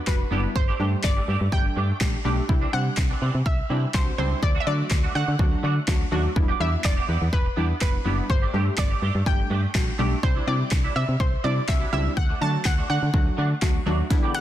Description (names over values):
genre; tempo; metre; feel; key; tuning
dance-pop; 124 BPM; 4/4; straight; D mixolydian; A4 = 439 Hz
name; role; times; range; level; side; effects
analog pluck; melody; 0.0-14.4 s; B4 to A5; -30 LUFS; equal; chorus, ping-pong delay
punchy chord stab; accompaniment; 0.1-14.4 s; F#3 to G4; -30 LUFS; left 1 dB; chorus, sidechain pumping
solid FM bass; bass; 0.1-14.0 s; E1 to D3; -25 LUFS; equal; sidechain pumping
pop drum kit; drums; 0.1-14.4 s; handclaps, hi-hat, kick drum, snare drum; -24 LUFS; equal; overdrive
twangy electric guitar; riff; 0.2-14.4 s; E3 to G4; -32 LUFS; right 6 dB; ensemble chorus
dark brass ensemble; sustained chords; 14.1-14.4 s; E2 to G3; -33 LUFS; left 4 dB; sidechain pumping
riser; sound effects; 14.1-14.4 s; none; barely audible; none; none
room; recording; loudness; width
light reverb; dense, heavily limited modern master; -21 LUFS; side -12 dB against mid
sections
0.0-14.1 A section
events
drum fill 14.1-14.4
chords
0.0 Em7; 0.6 Gsus2; 2.5 Cadd9; 4.4 D; 6.4 Em7; 8.3 Gsus2; 10.2 Cadd9; 12.2 D